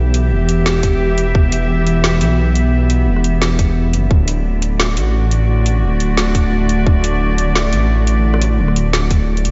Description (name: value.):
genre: half-time drum and bass.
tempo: 174 BPM.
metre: 4/4.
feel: swing 54% on 16ths, half-time.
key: unclear.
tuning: A4 = 440 Hz.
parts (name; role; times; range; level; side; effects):
warm studio cello section; sustained chords; 0.0-9.5 s; D3 to E5; -21 LUFS; equal; vintage 12-bit sampler grit, sidechain pumping.
dark detuned saw bass; bass; 0.0-9.5 s; D1 to B1; -18 LUFS; equal; none.
drum and bass drum kit; drums; 0.1-9.5 s; hi-hat, rim click, snare drum; -24 LUFS; equal; none.
electronic kick drum; drums; 0.8-1.4, 3.6-4.2, 6.3-6.9, 9.1-9.2 s; none; -16 LUFS; equal; none.
room: light reverb.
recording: nothing above 7.7 kHz.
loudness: -15 LUFS.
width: mono.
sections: 0.0-9.5 A section.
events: none.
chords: 0.0 Em; 4.1 D.